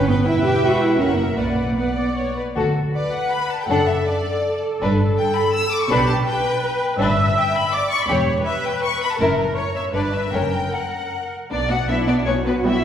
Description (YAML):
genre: quick classical-period movement for string orchestra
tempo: 149-167 BPM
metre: 3/4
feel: rubato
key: D major, B minor from 7.0 s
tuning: A4 = 440 Hz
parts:
  - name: clear studio violin section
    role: melody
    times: 0.0-12.8 s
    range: B3 to E6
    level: -25 LUFS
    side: left 3 dB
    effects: none
  - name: rich studio violin section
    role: second line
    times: 0.0-12.8 s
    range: C#4 to F#5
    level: -24 LUFS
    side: left 2 dB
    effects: none
  - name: rich studio viola section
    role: accompaniment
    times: 0.0-12.7 s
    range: G3 to E5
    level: -23 LUFS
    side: equal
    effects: none
  - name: clear studio cello section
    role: bass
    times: 0.0-12.8 s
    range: D2 to G4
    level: -23 LUFS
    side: right 1 dB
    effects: none
  - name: rich studio double bass section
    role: bass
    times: 0.0-12.8 s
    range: E1 to D2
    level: -25 LUFS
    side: right 1 dB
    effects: none
room: wet concert hall reverb, RT60 1.9 s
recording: heard from further back in the room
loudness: -18 LUFS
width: side -9 dB against mid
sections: 0.0-2.6 A section; 2.6-11.5 B section; 11.5-12.8 A section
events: none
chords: 0.3 Em; 1.0 F#7; 1.4 Bm; 2.6 D; 3.7 D/F#; 4.8 G; 5.9 G/B; 7.0 G; 8.1 C#dim/E; 9.2 F#7; 9.9 G; 10.3 F#; 11.5 Bm